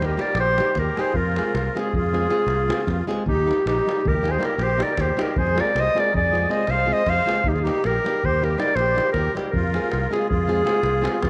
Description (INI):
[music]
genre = balkan folk, Balkan wedding band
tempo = 316 BPM (eighths)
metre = 11/8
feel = straight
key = Eb major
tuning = A4 = 440 Hz
[part]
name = warm clarinet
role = melody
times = 0.0-11.3 s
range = G4 to F5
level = -24 LUFS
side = equal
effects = tape echo
[part]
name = musette accordion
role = second line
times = 0.0-11.3 s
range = Eb4 to C5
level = -33 LUFS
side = equal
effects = none
[part]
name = nylon-string guitar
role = accompaniment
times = 0.0-11.2 s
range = G3 to Ab4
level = -31 LUFS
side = equal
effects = none
[part]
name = fingered electric bass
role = bass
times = 0.0-11.3 s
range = Bb1 to F2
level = -27 LUFS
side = equal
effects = none
[part]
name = davul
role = percussion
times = 0.0-11.3 s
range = none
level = -31 LUFS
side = equal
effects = none
[sound]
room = moderate plate reverb, RT60 2.8 s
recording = none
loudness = -22 LUFS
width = mono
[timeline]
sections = 0.0-11.3 A section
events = none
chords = 0.0 Eb; 1.1 Fm; 3.3 Eb; 5.4 Fm; 7.4 Eb; 9.5 Fm